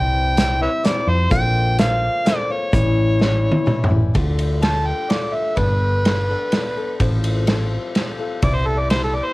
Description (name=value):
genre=folk rock and heartland rock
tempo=126 BPM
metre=3/4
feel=straight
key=unclear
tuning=A4 = 437 Hz
part: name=overdriven harmonica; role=melody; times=0.0-9.3 s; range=A4 to A5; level=-21 LUFS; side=equal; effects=none
part: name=picked old ladder-braced acoustic guitar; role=accompaniment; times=0.0-9.3 s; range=A2 to A4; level=-26 LUFS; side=left 4 dB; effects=cassette tape
part: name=hollow-body short-scale picked electric bass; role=bass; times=0.0-9.2 s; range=G1 to F2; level=-19 LUFS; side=equal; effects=none
part: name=loose indie drum kit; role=drums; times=0.4-9.0 s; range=hi-hat, kick drum, ride cymbal, snare drum, toms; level=-21 LUFS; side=equal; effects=none
room=light reverb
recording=home recording on cassette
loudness=-16 LUFS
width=side -20 dB against mid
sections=0.0-4.2 A section; 4.2-9.3 B section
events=drum fill 3.2-4.2; harmonica solo 4.2-9.3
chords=0.0 C; 1.3 Bbadd9; 2.7 A7; 4.2 Dm; 5.6 Gadd9; 7.0 F/A; 8.4 Cmaj7